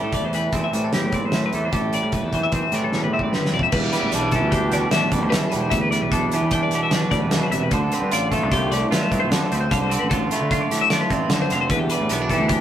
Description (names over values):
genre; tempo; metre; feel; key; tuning
math rock and midwest emo; 150 BPM; 5/4; straight; unclear; A4 = 436 Hz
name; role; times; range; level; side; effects
twangy electric guitar; accompaniment; 0.0-12.6 s; E2 to G4; -23 LUFS; right 3 dB; none
twelve-string electric guitar; arpeggios; 0.0-12.6 s; G4 to G5; -25 LUFS; left 4 dB; phaser
fuzz fingered electric bass; bass; 0.0-12.6 s; E1 to D3; -26 LUFS; equal; overdrive
loose indie drum kit; drums; 0.1-12.6 s; crash cymbal, hi-hat, kick drum, snare drum, toms; -24 LUFS; equal; none
room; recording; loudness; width
moderate stone room reverb, RT60 1.1 s; rough rehearsal-room recording; -18 LUFS; side -10 dB against mid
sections
0.0-3.7 A section; 3.7-12.6 B section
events
drum fill 2.9-3.7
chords
0.0 Am7; 3.7 Em7; 7.7 Dm7; 11.7 Em7